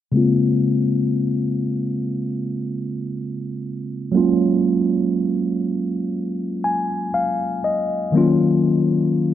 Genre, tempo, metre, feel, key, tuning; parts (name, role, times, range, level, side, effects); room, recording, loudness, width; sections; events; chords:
R&B; 60 BPM; 4/4; swing 54% on 16ths; Bb minor; A4 = 440 Hz
mellow tine electric piano; accompaniment; 0.1-9.3 s; Db3 to Ab5; -18 LUFS; moving between left 3 dB and right 5 dB; auto-pan, low-pass filter
light reverb, digital ambience; -18 LUFS; side -11 dB against mid
0.1-9.3 A section
filter sweep on tine electric piano 0.1-9.3; tine electric piano fill 6.1-8.1
0.1 Bbm7; 4.1 Gbmaj7; 8.1 Ebm7